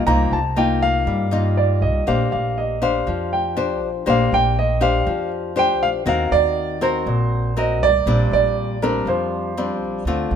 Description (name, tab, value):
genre	bossa nova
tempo	120 BPM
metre	4/4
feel	straight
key	Bb major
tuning	A4 = 440 Hz
part	nylon-string guitar	accompaniment	0.0-10.4 s	Bb2 to C5	-22 LUFS	left 3 dB	none
part	upright bass	bass	0.0-10.4 s	Bb1 to G2	-23 LUFS	right 1 dB	none
part	warm baby grand piano	melody	0.1-9.8 s	Bb4 to Bb5	-20 LUFS	right 2 dB	none
room	light reverb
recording	minimal, uncompressed stereo recording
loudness	-17 LUFS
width	side -8 dB against mid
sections	0.0-10.1 A section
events	none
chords	0.0 Cm11; 2.1 Bb69; 6.1 Ebm6; 8.1 Bb69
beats	| 0.06 0.56 1.06 1.56 | 2.06 2.56 3.06 3.56 | 4.06 4.56 5.06 5.56 | 6.06 6.56 7.06 7.56 | 8.06 8.56 9.06 9.56 | 10.06